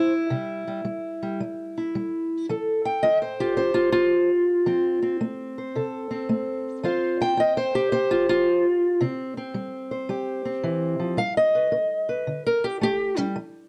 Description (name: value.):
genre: acoustic country blues, solo or duo.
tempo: 110 BPM.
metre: 4/4.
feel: swing 67% on 8ths.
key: C major.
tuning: A4 = 441 Hz.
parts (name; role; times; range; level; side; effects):
fingerpicked steel-string acoustic guitar; solo; 0.0-13.7 s; C3 to G5; -24 LUFS; equal; none.
room: light reverb.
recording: dark, warm production.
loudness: -24 LUFS.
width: mono.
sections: 0.0-13.7 A section.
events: none.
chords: 0.0 C; 2.5 F; 6.8 F5; 9.0 C; 11.2 G.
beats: | 0.30 0.85 1.39 1.94 | 2.48 3.02 3.57 4.11 | 4.66 5.20 5.75 6.29 | 6.83 7.38 7.92 8.46 | 9.01 9.55 10.10 10.64 | 11.18 11.73 12.27 12.81 | 13.36.